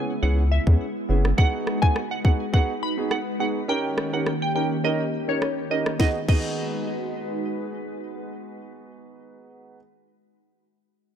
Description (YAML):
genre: dancehall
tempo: 104 BPM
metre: 4/4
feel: straight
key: G# minor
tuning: A4 = 442 Hz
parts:
  - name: glassy wavetable pluck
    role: melody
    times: 0.0-7.7 s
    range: C#5 to B5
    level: -28 LUFS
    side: right 1 dB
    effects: chorus, ping-pong delay
  - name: warm grand piano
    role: accompaniment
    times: 0.0-9.8 s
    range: B3 to A#4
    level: -30 LUFS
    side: right 3 dB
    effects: none
  - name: glassy FM pad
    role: sustained chords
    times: 0.0-9.1 s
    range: C#3 to B4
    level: -30 LUFS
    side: left 1 dB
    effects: ensemble chorus, built-in reverb, sidechain pumping
  - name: round analog bass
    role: bass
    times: 0.2-1.3 s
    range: F#1 to E2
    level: -20 LUFS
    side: equal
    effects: none
  - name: island pop drum kit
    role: drums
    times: 0.7-6.5 s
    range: crash cymbal, kick drum, rim click, snare drum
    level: -22 LUFS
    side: equal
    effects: none
room: light reverb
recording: dark, warm production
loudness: -21 LUFS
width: side -9 dB against mid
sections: 0.0-6.0 A section; 6.0-8.3 B section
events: none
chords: 0.0 C#m7; 1.4 G#m7; 3.7 D#7; 6.0 G#m7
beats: 0.23 0.80 | 1.38 1.96 2.53 3.11 | 3.69 4.26 4.84 5.42 | 6.00 6.57 7.15 7.73